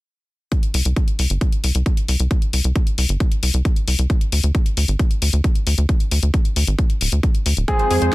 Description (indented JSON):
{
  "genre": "uplifting trance",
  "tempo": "134 BPM",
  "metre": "4/4",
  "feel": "straight",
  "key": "unclear",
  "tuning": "A4 = 440 Hz",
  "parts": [
    { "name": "electronic hi-hat", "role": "drums", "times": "0.5-8.1 s", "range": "none", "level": "-25 LUFS", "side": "left 4 dB", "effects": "soft clipping on snare" },
    { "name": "electronic kick drum", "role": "drums", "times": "0.5-7.8 s", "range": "none", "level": "-18 LUFS", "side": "equal", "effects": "none" },
    { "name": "tight sequencer bass", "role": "bass", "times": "0.7-8.1 s", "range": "D1 to F2", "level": "-17 LUFS", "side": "equal", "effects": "sidechain pumping" },
    { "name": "warm grand piano", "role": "second line", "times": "7.7-8.1 s", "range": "Ab4", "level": "-19 LUFS", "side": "right 2 dB", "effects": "tape echo" },
    { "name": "analog string pad", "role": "sustained chords", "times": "7.7-8.1 s", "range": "F3 to C4", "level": "-23 LUFS", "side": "left 1 dB", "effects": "ensemble chorus, sidechain pumping" },
    { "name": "analog pluck", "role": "arpeggios", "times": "7.7-8.1 s", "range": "C4 to C5", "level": "-23 LUFS", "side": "left 2 dB", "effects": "chorus, sidechain pumping, tape echo" }
  ],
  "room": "little or no reverb",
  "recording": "dense, heavily limited modern master",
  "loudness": "-16 LUFS",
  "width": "side -19 dB against mid",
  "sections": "0.5-8.1 A section",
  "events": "none",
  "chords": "0.5 C5; 4.1 N.C.",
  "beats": "| 0.52 0.96 1.41 1.86 | 2.31 2.76 3.20 3.65 | 4.10 4.55 5.00 5.44 | 5.89 6.34 6.79 7.23 | 7.68 8.13"
}